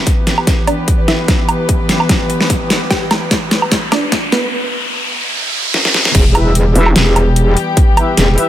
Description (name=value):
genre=heavy wobble dubstep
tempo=148 BPM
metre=4/4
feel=swing 54% on 16ths, half-time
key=E minor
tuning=A4 = 440 Hz
part: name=dark chamber string section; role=sustained chords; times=0.0-8.5 s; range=E3 to B4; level=-20 LUFS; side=left 2 dB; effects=sidechain pumping
part: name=riser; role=sound effects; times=1.5-6.1 s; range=none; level=-21 LUFS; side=right 1 dB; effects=none
part: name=dubstep drum kit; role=drums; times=0.1-8.5 s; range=crash cymbal, hi-hat, snare drum, woodblock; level=-15 LUFS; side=equal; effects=overdrive
part: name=electronic kick drum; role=drums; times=0.1-7.9 s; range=none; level=-14 LUFS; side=equal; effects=overdrive
part: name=wide unison pluck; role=melody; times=0.7-6.1 s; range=B3 to G5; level=-20 LUFS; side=right 1 dB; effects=digital delay
part: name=metallic wobble bass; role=bass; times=6.1-8.4 s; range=E1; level=-12 LUFS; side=equal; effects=chorus, overdrive
part: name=dark brass ensemble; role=stabs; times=6.3-8.5 s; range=E4 to E5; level=-19 LUFS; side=left 1 dB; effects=vintage 12-bit sampler grit, digital delay
part: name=vowel-sweep wobble bass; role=bass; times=6.8-6.9 s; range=E1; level=-10 LUFS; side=equal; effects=chorus, overdrive
room=light reverb, digital ambience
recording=high-pass filter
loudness=-11 LUFS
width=side -12 dB against mid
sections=0.0-6.1 A section; 6.1-8.5 B section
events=build-up 0.0-6.1; drum fill 0.0-4.5, 5.7-6.1; filter sweep 0.0-6.1; riser 1.5-6.1; drop 6.1-8.5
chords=0.0 Em